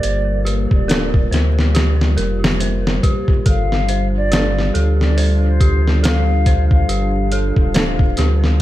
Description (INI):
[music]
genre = trip hop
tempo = 70 BPM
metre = 4/4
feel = swing 58% on 16ths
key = G minor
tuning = A4 = 440 Hz
[part]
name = mellow hollow concert flute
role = melody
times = 0.0-7.3 s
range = C5 to F5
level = -25 LUFS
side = left 2 dB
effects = tape echo
[part]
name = dark analog pad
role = sustained chords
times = 0.0-8.6 s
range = G3 to F4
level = -24 LUFS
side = right 1 dB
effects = chorus, vintage 12-bit sampler grit
[part]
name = dark detuned synth bell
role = arpeggios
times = 0.0-8.6 s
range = G4 to C5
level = -26 LUFS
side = equal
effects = chorus, tape echo
[part]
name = warm sub bass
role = bass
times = 0.0-8.6 s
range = D1 to D2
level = -17 LUFS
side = equal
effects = none
[part]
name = dusty soul sampler-style drum kit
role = drums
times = 0.0-8.6 s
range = hi-hat, kick drum, snare drum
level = -17 LUFS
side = equal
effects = analog delay
[part]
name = bright reed electric piano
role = accompaniment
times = 0.9-7.9 s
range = A3 to A4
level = -28 LUFS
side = equal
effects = none
[sound]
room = little or no reverb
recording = echo-heavy mix, vinyl crackle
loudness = -14 LUFS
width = side -14 dB against mid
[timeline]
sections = 0.0-8.6 A section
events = none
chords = 0.0 Gm7; 3.5 Dm/G